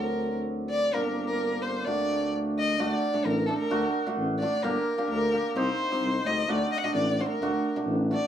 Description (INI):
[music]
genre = klezmer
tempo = 130 BPM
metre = 2/4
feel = straight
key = D phrygian dominant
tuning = A4 = 440 Hz
[part]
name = warm violin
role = melody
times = 0.0-8.3 s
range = A4 to F#5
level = -29 LUFS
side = left 1 dB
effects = none
[part]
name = hammered dulcimer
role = accompaniment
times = 0.0-8.2 s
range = F#3 to A4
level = -29 LUFS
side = right 2 dB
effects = none
[part]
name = mellow tuba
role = bass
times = 0.0-8.1 s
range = G1 to D2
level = -30 LUFS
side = left 1 dB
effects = none
[sound]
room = wet small room reverb, RT60 0.5 s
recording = band playing live in one room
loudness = -25 LUFS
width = side -9 dB against mid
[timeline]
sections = 0.0-2.8 A section; 2.8-8.3 A section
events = none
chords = 0.0 D; 0.9 Gm; 1.9 D; 4.6 Gm; 5.6 Cm; 6.5 D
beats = | 0.00 0.47 | 0.93 1.40 | 1.86 2.32 | 2.79 3.25 | 3.71 4.17 | 4.64 5.10 | 5.56 6.02 | 6.49 6.95 | 7.41 7.87